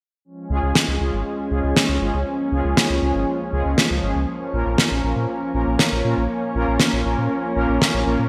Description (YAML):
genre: italo disco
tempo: 119 BPM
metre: 4/4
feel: straight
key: Db major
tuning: A4 = 438 Hz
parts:
  - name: warm analog pad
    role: sustained chords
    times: 0.2-8.3 s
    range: F3 to Db4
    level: -28 LUFS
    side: equal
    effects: lush chorus, shimmer reverb
  - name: analog synth brass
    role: stabs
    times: 0.5-8.2 s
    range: Ab3 to Bb4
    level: -26 LUFS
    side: equal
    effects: chorus, digital delay, shimmer reverb
  - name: round analog bass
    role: bass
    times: 0.5-8.3 s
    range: Ab1 to Bb2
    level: -26 LUFS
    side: equal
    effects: none
  - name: snare drum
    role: drums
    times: 0.8-7.9 s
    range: none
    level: -22 LUFS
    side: equal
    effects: studio reverb, gated reverb
room: wet lush hall reverb, RT60 1.7 s, studio ambience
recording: bright 1980s-style digital production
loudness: -21 LUFS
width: mono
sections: 0.2-8.3 A section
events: none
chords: 0.2 Db; 4.3 Bbm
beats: | 0.25 0.75 1.26 1.76 | 2.27 2.77 3.27 3.78 | 4.28 4.79 5.29 5.80 | 6.30 6.80 7.31 7.81